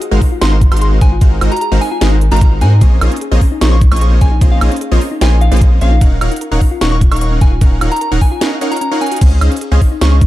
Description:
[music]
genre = future bass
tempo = 150 BPM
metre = 4/4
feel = half-time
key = Eb dorian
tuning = A4 = 440 Hz
[part]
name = thumb-piano-like synth pluck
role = arpeggios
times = 0.0-10.3 s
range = C4 to Bb4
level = -23 LUFS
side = left 2 dB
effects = chorus, sidechain pumping, digital delay
[part]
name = trap drum kit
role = drums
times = 0.0-10.3 s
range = crash cymbal, hi-hat, ride cymbal, snare drum, woodblock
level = -20 LUFS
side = right 1 dB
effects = none
[part]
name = supersaw stab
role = riff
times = 0.1-10.2 s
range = Ab3 to Gb5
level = -19 LUFS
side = right 1 dB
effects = sidechain pumping
[part]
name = saturated sub bass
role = bass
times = 0.1-10.3 s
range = Eb1 to Ab2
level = -11 LUFS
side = equal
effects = sidechain pumping
[part]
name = electronic kick drum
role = drums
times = 0.2-10.3 s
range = none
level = -10 LUFS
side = equal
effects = none
[part]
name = soft synth bell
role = melody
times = 0.4-10.2 s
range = F5 to Db6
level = -22 LUFS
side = equal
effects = chorus, sidechain pumping, dub echo
[sound]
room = digital ambience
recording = dark, warm production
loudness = -9 LUFS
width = side -15 dB against mid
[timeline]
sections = 0.0-10.3 A section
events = break 8.4-9.2; drum fill 9.0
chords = 0.0 Ab13; 2.8 Bbm11; 6.0 Ebm9; 9.2 Dbmaj9

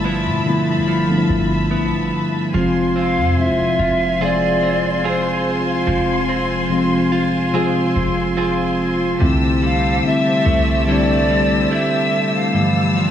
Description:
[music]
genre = contemporary R&B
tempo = 72 BPM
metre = 4/4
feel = straight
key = unclear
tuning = A4 = 442 Hz
[part]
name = mellow tine electric piano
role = accompaniment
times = 0.0-13.1 s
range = G2 to Ab4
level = -19 LUFS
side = left 2 dB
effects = slow stereo tremolo
[part]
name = rich studio string section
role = sustained chords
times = 0.0-13.1 s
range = F3 to E6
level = -23 LUFS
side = left 2 dB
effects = none
[part]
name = direct-recorded clean electric guitar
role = arpeggios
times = 0.0-13.1 s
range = G2 to Ab4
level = -23 LUFS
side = right 5 dB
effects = wide subtle chorus, tape echo
[part]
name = soft 808-style bass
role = bass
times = 0.0-11.7 s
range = F1 to B2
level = -24 LUFS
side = equal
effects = none
[part]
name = polished pan flute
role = melody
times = 3.0-13.1 s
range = C5 to F5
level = -21 LUFS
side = equal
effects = tape echo
[sound]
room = light reverb, small room ambience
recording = studio reverb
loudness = -15 LUFS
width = side -10 dB against mid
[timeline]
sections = 0.0-2.5 A section; 2.5-13.1 B section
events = none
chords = 0.0 G13; 2.5 Fm; 9.2 C6; 12.5 G13

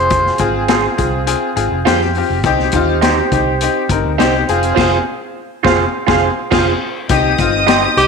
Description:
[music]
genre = uptempo 1960s-style soul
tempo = 103 BPM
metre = 4/4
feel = straight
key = unclear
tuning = A4 = 439 Hz
[part]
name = breathy tenor saxophone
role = melody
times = 0.0-0.4, 8.0-8.1 s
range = G4 to C5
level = -14 LUFS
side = equal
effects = none
[part]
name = dark horn section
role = second line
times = 0.0-6.7 s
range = C4 to F5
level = -22 LUFS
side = right 11 dB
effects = none
[part]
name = clear upright piano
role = accompaniment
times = 0.0-8.1 s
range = C4 to Bb4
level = -17 LUFS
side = left 7 dB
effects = none
[part]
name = vintage muted fingered electric bass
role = bass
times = 0.0-8.1 s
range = F1 to F2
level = -20 LUFS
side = right 2 dB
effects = transformer saturation
[part]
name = vintage drum kit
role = drums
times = 0.1-8.1 s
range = crash cymbal, hi-hat, kick drum, snare drum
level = -19 LUFS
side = left 5 dB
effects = none
[part]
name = electric guitar through a small old amp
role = stabs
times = 0.7-7.8 s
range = Eb4 to C5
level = -18 LUFS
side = right 11 dB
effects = phaser
[part]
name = dark studio violin section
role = second line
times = 7.1-8.1 s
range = Eb5 to Eb6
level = -17 LUFS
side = right 2 dB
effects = none
[sound]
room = moderate echo chamber reverb, RT60 1.8 s, studio ambience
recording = 1960s-style stereo with parts hard left and right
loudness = -12 LUFS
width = side -5 dB against mid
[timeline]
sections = 0.0-7.1 A section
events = band accent 4.8-7.1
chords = 0.0 Fm; 2.4 Cm; 4.5 Fm; 7.1 Cm

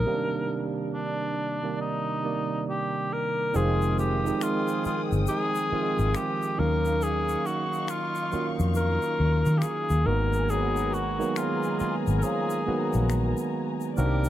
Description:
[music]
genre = R&B, neo-soul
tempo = 69 BPM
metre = 4/4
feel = swing 61% on 16ths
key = unclear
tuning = A4 = 440 Hz
[part]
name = warm cor anglais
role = melody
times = 0.0-14.3 s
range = D4 to Bb4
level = -29 LUFS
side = left 1 dB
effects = analog delay
[part]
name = overdriven tine electric piano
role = accompaniment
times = 0.0-14.3 s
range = C3 to F5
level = -29 LUFS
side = right 4 dB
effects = analog delay
[part]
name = vintage muted fingered electric bass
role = bass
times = 0.0-14.3 s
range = F1 to Eb3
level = -25 LUFS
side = left 1 dB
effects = none
[part]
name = muted studio string section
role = sustained chords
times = 3.5-14.3 s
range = Ab3 to Eb6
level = -38 LUFS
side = left 4 dB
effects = none
[part]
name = clear horn section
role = stabs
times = 3.5-13.3 s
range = C3 to Ab4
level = -35 LUFS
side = left 4 dB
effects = analog delay
[part]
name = egg shaker and finger snaps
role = percussion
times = 3.5-14.3 s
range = none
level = -41 LUFS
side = left 7 dB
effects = none
[sound]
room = light reverb, small room ambience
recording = echo-heavy mix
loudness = -24 LUFS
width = side -12 dB against mid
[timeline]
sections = 0.0-3.5 A section; 3.5-14.3 B section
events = break 0.1-3.5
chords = 0.1 Cm9; 3.5 Fm9; 6.6 Ebm9; 10.1 Abm9

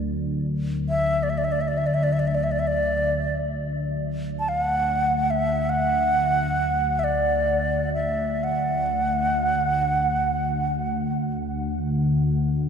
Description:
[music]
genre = world meditative, free-time meditation music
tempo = free time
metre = none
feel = none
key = D major pentatonic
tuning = A4 = 439 Hz
[part]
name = deep dark ambient pad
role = drone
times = 0.0-12.7 s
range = D2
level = -25 LUFS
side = left 1 dB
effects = chorus, built-in reverb
[part]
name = bronze singing bowl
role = texture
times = 0.0-3.7 s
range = F#3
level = -41 LUFS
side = right 5 dB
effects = none
[part]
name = bright xiao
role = melody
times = 0.9-11.3 s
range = D5 to A5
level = -23 LUFS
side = right 1 dB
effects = tape echo
[sound]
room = wet cathedral reverb, RT60 5.3 s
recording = dark, warm production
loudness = -21 LUFS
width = side -7 dB against mid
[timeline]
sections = 0.0-3.6 A section; 3.6-12.7 A section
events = none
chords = none

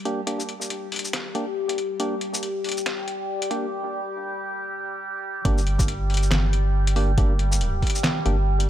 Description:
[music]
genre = deep dubstep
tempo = 139 BPM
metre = 4/4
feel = swing 59% on 16ths, half-time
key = G minor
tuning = A4 = 437 Hz
[part]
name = overtone-sweeping drone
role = sustained chords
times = 0.0-8.7 s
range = G3 to G4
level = -29 LUFS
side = left 2 dB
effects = chorus, built-in reverb, vintage 12-bit sampler grit
[part]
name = percussive organ stab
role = stabs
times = 0.1-8.4 s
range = Bb3 to G4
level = -31 LUFS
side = right 1 dB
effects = chorus, dub echo
[part]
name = trip hop sampler-style drum kit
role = drums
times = 0.1-8.7 s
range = handclaps, hi-hat, shaker, snare drum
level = -27 LUFS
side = left 1 dB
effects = high-pass filter on hats, high-pass filter on perc, high-pass filter on snare
[part]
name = soft dub sub bass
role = bass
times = 5.5-8.7 s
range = G1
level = -21 LUFS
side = equal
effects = none
[part]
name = electronic kick drum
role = drums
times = 5.5-7.9 s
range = none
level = -23 LUFS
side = equal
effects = none
[sound]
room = digital ambience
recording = high-pass filter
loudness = -22 LUFS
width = side -12 dB against mid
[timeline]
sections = 0.0-5.5 A section; 5.5-8.7 B section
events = build-up 0.0-5.5; filter sweep 0.0-5.5; break 3.7-5.5; drop 5.5-8.7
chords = 0.0 Gm

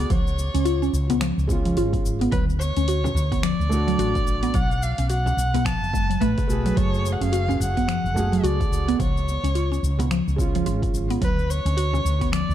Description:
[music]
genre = organic downtempo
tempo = 108 BPM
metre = 4/4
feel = swing 59% on 16ths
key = F# harmonic minor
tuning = A4 = 437 Hz
[part]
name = clear kamancheh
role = melody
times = 0.0-12.5 s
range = B4 to A5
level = -29 LUFS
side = equal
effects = digital delay
[part]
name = felt-muted upright piano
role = accompaniment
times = 0.0-11.2 s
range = G#3 to G#4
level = -30 LUFS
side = right 3 dB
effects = vintage 12-bit sampler grit, sidechain pumping, tape echo
[part]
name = mallet-like synth pluck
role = arpeggios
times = 0.0-12.5 s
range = C#3 to F#4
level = -26 LUFS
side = equal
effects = chorus, phaser, tape echo
[part]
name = woody fretless electric bass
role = bass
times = 0.0-12.5 s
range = F#1 to D2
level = -24 LUFS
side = equal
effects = sidechain pumping
[part]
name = deep house drum kit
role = drums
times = 0.0-12.5 s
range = finger snaps, hi-hat, shaker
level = -35 LUFS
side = left 2 dB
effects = small room ambience
[part]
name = electronic kick drum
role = drums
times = 0.1-12.3 s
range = none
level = -26 LUFS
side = equal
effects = small room ambience
[part]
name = frame drum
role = percussion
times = 1.1-12.0 s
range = none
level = -32 LUFS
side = right 2 dB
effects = none
[sound]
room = digital ambience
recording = dark, warm production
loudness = -20 LUFS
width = side -11 dB against mid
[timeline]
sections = 0.0-12.5 A section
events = none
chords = 0.1 C#; 2.3 D; 4.5 F#madd9; 9.0 C#; 11.2 D6

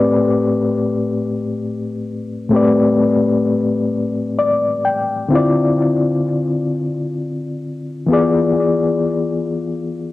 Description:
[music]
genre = R&B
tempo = 43 BPM (dotted quarters)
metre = 6/8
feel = straight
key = A minor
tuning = A4 = 440 Hz
[part]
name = reed electric piano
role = solo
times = 0.0-10.1 s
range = A2 to G5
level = -15 LUFS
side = left 2 dB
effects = fast tremolo, cassette tape, analog delay
[sound]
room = light reverb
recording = home recording on cassette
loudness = -15 LUFS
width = side -16 dB against mid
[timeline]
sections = 0.0-10.1 A section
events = reed electric piano fill 3.9-5.3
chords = 0.0 Am11; 5.3 Dm9; 8.1 E7b9

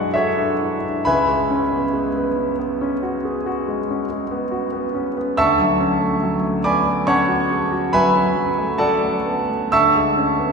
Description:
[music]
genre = classical, impressionist solo piano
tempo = 69 BPM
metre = 5/4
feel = rubato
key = unclear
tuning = A4 = 440 Hz
[part]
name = warm concert grand piano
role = solo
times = 0.0-10.5 s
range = B1 to E6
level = -17 LUFS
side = equal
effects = none
[sound]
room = wet church reverb, RT60 3.2 s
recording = recorded in a church or concert hall, lossy compression artefacts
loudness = -17 LUFS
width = side -5 dB against mid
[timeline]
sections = 0.0-10.5 A section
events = none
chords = 0.0 Bm6; 1.1 C#7sus4; 5.4 Dmaj9

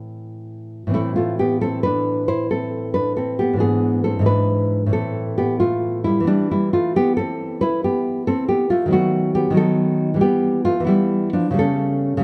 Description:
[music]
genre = classical, baroque-style dance for nylon-string guitar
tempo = 90 BPM (dotted quarters)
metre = 12/8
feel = rubato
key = A minor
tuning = A4 = 443 Hz
[part]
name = nylon-string guitar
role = solo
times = 0.0-12.2 s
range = G#2 to C5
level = -20 LUFS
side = equal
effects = none
[sound]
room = moderate recital hall reverb, RT60 1.7 s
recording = dark, warm production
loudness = -20 LUFS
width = mono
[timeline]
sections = 0.9-12.2 A section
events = none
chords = 0.0 Am; 3.6 E7/G#; 4.9 Am; 6.3 Em; 8.9 B7/D#; 10.2 Em; 11.6 A7/C#

